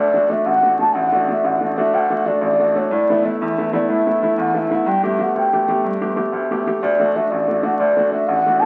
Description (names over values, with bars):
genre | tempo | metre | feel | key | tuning
celtic folk, Celtic slide | 123 BPM (dotted quarters) | 12/8 | straight | D major | A4 = 438 Hz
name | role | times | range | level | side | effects
mellow hollow bass bansuri | melody | 0.0-8.7 s | C#5 to A5 | -20 LUFS | equal | none
clear upright piano | accompaniment | 0.0-8.7 s | A1 to G4 | -22 LUFS | equal | none
room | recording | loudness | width
wet club reverb, RT60 0.8 s | very old 78 rpm record, vinyl crackle | -18 LUFS | mono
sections
0.0-8.7 A section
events
none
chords
0.0 D; 2.9 Asus2; 4.9 Gadd9; 6.8 D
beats
0.46 | 0.95 1.44 1.94 2.43 | 2.92 3.41 3.90 4.39 | 4.87 5.36 5.85 6.34 | 6.83 7.32 7.80 8.29